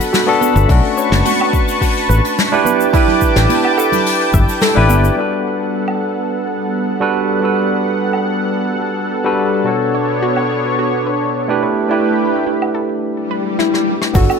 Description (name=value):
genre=sunset chillout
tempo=107 BPM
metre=4/4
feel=straight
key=G lydian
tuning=A4 = 438 Hz
part: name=barky tine electric piano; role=accompaniment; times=0.0-14.4 s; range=B2 to C#5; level=-17 LUFS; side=moving between left 6 dB and right 6 dB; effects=auto-pan, ping-pong delay
part: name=lush unison pad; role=sustained chords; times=0.0-14.4 s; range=G3 to D6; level=-19 LUFS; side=left 1 dB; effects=chorus
part: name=jazz brush drum kit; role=drums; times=0.0-14.4 s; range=hi-hat, rim click, shaker, snare drum, woodblock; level=-21 LUFS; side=left 1 dB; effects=none
part: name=soft round pluck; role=arpeggios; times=0.1-5.2, 9.9-14.4 s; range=E4 to E5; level=-21 LUFS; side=right 2 dB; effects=chorus, ping-pong delay
part: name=congas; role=percussion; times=0.4-5.0 s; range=none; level=-24 LUFS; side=right 6 dB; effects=none
part: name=fretless electric bass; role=bass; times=0.6-5.1, 14.2 s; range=F#1 to B1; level=-13 LUFS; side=left 1 dB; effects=tube saturation
part: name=electronic kick drum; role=drums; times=0.7-4.5, 14.2-14.3 s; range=none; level=-15 LUFS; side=left 1 dB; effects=none
part: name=swell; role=sound effects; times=13.2-14.1 s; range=none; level=-21 LUFS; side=left 1 dB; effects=none
room=light reverb, small room ambience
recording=none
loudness=-13 LUFS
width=side -6 dB against mid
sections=0.0-5.2 A section; 5.2-14.2 B section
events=kick drops out 4.6-5.2; swell 13.2-14.2; drum fill 13.6-14.2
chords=0.0 Gmaj9; 0.7 Bm9; 2.7 A9sus4; 5.2 Gmaj9; 9.7 Bm9; 11.6 A9sus4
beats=0.13 | 0.69 1.25 1.81 2.38 | 2.94 3.50 4.06 4.62 | 5.18 5.74 6.30 6.86 | 7.42 7.98 8.54 9.10 | 9.66 10.23 10.79 11.35 | 11.91 12.47 13.03 13.59 | 14.15